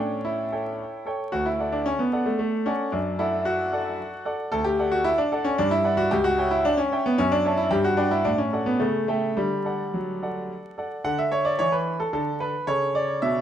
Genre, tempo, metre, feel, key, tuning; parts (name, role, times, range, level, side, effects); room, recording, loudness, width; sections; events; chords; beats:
classical-period piano sonatina; 112 BPM; 3/4; straight; D major; A4 = 441 Hz
clear concert grand piano; solo; 0.0-13.4 s; C#2 to A5; -22 LUFS; equal
moderate recital hall reverb, RT60 1.7 s; close, detailed microphones, vinyl crackle; -22 LUFS; side -10 dB against mid
0.0-11.1 A section; 11.1-13.4 A section
0.0 A7; 1.3 D; 2.9 D/F#; 4.5 D; 5.6 Gmaj7; 6.1 C#dim; 7.2 F#m7; 7.7 G; 8.3 D/A; 8.8 A7/C#; 9.4 D; 11.1 D5; 12.7 A
0.26 0.79 | 1.33 1.86 2.39 | 2.92 3.46 3.99 | 4.52 5.05 5.59 | 6.12 6.66 7.19 | 7.72 8.26 8.81 | 9.37 9.94 10.50 | 11.05 11.60 12.14 | 12.68 13.22